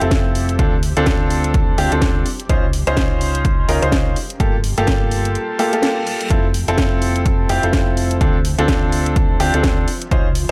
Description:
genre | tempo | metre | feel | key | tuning
piano house | 126 BPM | 4/4 | swing 58% on 16ths | unclear | A4 = 439 Hz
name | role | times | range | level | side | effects
clear upright piano | riff | 0.0-10.3 s | Bb3 to C5 | -22 LUFS | equal | sidechain pumping, tape echo
hollow-body short-scale fingered electric bass | bass | 0.0-10.5 s | F1 to D2 | -23 LUFS | equal | sidechain pumping
house drum kit | drums | 0.0-10.5 s | hi-hat, snare drum | -26 LUFS | equal | overdrive
granular cloud pad | texture | 0.2-10.5 s | Bb3 to C6 | -38 LUFS | equal | none
electronic kick drum | drums | 0.1-10.2 s | none | -21 LUFS | equal | none
reverse cymbal | sound effects | 5.5-6.3 s | none | -34 LUFS | equal | none
room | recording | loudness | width
little or no reverb | none | -17 LUFS | mono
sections
0.0-10.5 A section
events
reverse cymbal 5.5-6.3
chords
0.0 Fmaj7; 0.6 Dm7; 2.3 Dbmaj9; 4.2 Gm9; 6.3 Fmaj7; 8.2 Dm7; 9.9 Dbmaj9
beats
0.11 | 0.59 1.07 1.54 2.02 | 2.50 2.97 3.45 3.92 | 4.40 4.88 5.35 5.83 | 6.30 6.78 7.26 7.73 | 8.21 8.69 9.16 9.64 | 10.11

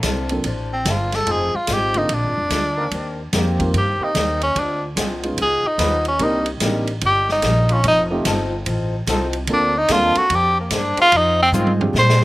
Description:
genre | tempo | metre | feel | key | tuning
jazz, big band swing | 146 BPM | 4/4 | swing 64% on 8ths | unclear | A4 = 440 Hz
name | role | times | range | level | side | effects
picked acoustic archtop guitar | accompaniment | 0.0-12.2 s | Bb2 to C5 | -29 LUFS | left 3 dB | slapback echo
clear trombone section | sustained chords | 0.0-12.2 s | D3 to Cb5 | -26 LUFS | equal | none
upright bass | bass | 0.0-12.2 s | F1 to Bb2 | -22 LUFS | equal | none
swinging big-band drum kit | drums | 0.0-12.2 s | hi-hat, kick drum, ride cymbal, snare drum, toms | -25 LUFS | right 1 dB | none
dark baby grand piano | accompaniment | 0.3-11.9 s | D3 to A4 | -24 LUFS | right 1 dB | none
clear tenor saxophone | melody | 0.7-12.2 s | Bb3 to C5 | -17 LUFS | equal | slapback echo
room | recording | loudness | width
little or no reverb | none | -16 LUFS | side -18 dB against mid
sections
0.0-12.2 A section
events
tenor saxophone solo 0.0-12.2; drum fill 11.5-12.2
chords
0.0 Bbmaj9; 1.3 Fm7; 2.9 Eb6; 4.6 Dm7b5; 5.4 Db9; 6.2 Cm7; 7.8 F7; 9.5 Bbmaj9; 11.1 Fm7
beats
0.04 0.45 0.86 | 1.27 1.68 2.09 2.50 | 2.91 3.32 3.73 4.15 | 4.56 4.97 5.38 5.79 | 6.20 6.61 7.02 7.43 | 7.84 8.25 8.66 9.07 | 9.48 9.89 10.30 10.71 | 11.12 11.53 11.94

